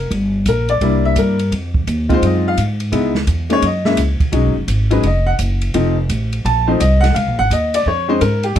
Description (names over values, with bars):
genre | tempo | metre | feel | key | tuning
jazz piano trio | 170 BPM | 4/4 | swing 65% on 8ths | Bb minor | A4 = 440 Hz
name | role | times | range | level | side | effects
clear upright piano | melody | 0.0-8.6 s | F3 to A5 | -16 LUFS | left 2 dB | none
upright bass | bass | 0.0-8.6 s | F1 to A2 | -17 LUFS | equal | none
open jazz drum kit | drums | 0.1-8.6 s | hi-hat, kick drum, ride cymbal, snare drum | -24 LUFS | right 2 dB | none
room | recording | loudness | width
little or no reverb | dark, warm production | -14 LUFS | side -10 dB against mid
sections
0.0-8.6 A section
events
upright piano solo 0.0-8.6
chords
0.1 Gm; 0.8 C7; 1.5 Fm7; 2.9 Dbm7; 3.6 Gb7(no3); 4.3 B6 (rootless); 5.7 F7; 7.2 Bbm11 (rootless)